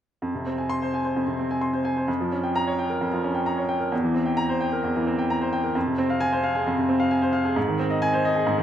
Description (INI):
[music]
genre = classical, virtuoso piano study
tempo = 131 BPM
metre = 4/4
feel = rubato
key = F minor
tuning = A4 = 443 Hz
[part]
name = clear baby grand piano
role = solo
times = 0.2-8.6 s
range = E2 to C6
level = -22 LUFS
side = equal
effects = none
[sound]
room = moderate scoring stage reverb, RT60 1.4 s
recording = none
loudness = -22 LUFS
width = side -10 dB against mid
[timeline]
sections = 0.2-8.6 A section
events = none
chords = 0.2 Fm; 2.1 Gm7b5/F; 3.9 C7/E; 5.8 Fm; 7.6 Ab